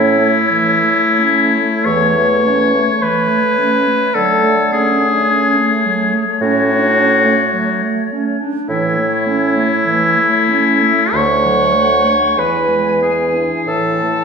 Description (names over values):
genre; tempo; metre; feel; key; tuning
classical, slow romantic movement for wind quintet; 42-54 BPM; 4/4; rubato; A major; A4 = 441 Hz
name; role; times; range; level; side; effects
bright silver concert flute; melody; 0.0-14.2 s; C#5 to A5; -21 LUFS; left 5 dB; none
warm oboe; second line; 0.0-14.2 s; E4 to C#5; -14 LUFS; left 2 dB; none
mellow clarinet; accompaniment; 0.0-14.2 s; D3 to D4; -20 LUFS; right 4 dB; none
warm French horn; accompaniment; 0.0-14.2 s; E3 to A3; -22 LUFS; right 1 dB; none
mellow bassoon; bass; 0.0-14.2 s; D2 to D3; -18 LUFS; right 1 dB; none
room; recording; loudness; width
wet recital hall reverb, RT60 1.7 s; recorded in a church or concert hall; -12 LUFS; side -6 dB against mid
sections
0.0-14.2 A section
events
none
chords
0.0 A; 4.2 Dmaj7; 8.7 A; 11.1 D; 12.4 E7; 13.7 A5